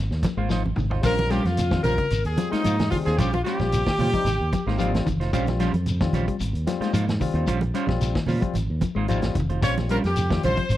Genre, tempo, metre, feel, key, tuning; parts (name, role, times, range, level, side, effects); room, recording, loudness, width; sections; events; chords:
afrobeat; 112 BPM; 4/4; straight; Bb dorian; A4 = 444 Hz
mellow electric guitar; arpeggios; 0.0-10.8 s; Db3 to Ab3; -30 LUFS; left 5 dB
fingered electric bass; bass; 0.0-10.8 s; F1 to Bb2; -25 LUFS; equal
vintage drum kit; drums; 0.1-10.8 s; hi-hat, kick drum, snare drum, toms; -29 LUFS; equal
clean electric guitar; stabs; 0.2-10.7 s; G3 to C5; -31 LUFS; right 6 dB; wide subtle chorus
congas; percussion; 0.2-10.6 s; -30 LUFS; right 4 dB
shekere; percussion; 0.2-10.8 s; -32 LUFS; left 2 dB
barky tine electric piano; accompaniment; 1.0-10.6 s; G3 to Ab4; -32 LUFS; left 7 dB; overdrive
clear horn section; melody; 1.1-5.0, 9.6-10.8 s; Eb4 to Db5; -25 LUFS; left 1 dB; slapback echo
small room ambience; dry, close 1970s-style studio recording; -21 LUFS; side -14 dB against mid
0.0-10.8 A section
drum fill 0.5-1.0, 9.2-9.6
0.0 Ab69; 1.0 Bbm69; 2.1 Ab69; 3.2 Bbm69; 4.3 Ab69; 5.3 Bbm69; 6.4 Ab69; 7.5 Bbm69; 8.6 Ab69; 9.6 Bbm69